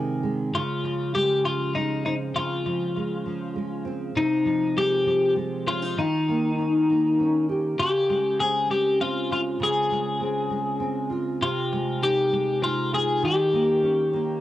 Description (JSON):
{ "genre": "pop", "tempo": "66 BPM (dotted quarters)", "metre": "6/8", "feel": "straight", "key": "unclear", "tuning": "A4 = 441 Hz", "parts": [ { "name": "nylon-string guitar", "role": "accompaniment", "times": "0.0-14.4 s", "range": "C3 to G4", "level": "-27 LUFS", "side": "right 2 dB", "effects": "double-tracked left and right, cassette tape" }, { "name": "twelve-string electric guitar", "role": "melody", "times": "0.6-14.4 s", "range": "Eb4 to Ab4", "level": "-23 LUFS", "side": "left 2 dB", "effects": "tape echo" } ], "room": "light reverb, studio ambience", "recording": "home recording on cassette", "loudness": "-22 LUFS", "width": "side -14 dB against mid", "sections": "0.5-14.4 A section", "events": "none", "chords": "0.0 Ab/C; 0.5 Dbmaj7; 4.2 Ab6/C; 6.0 Eb7; 7.8 Dbmaj7; 11.4 Ab6/C; 13.2 Eb7" }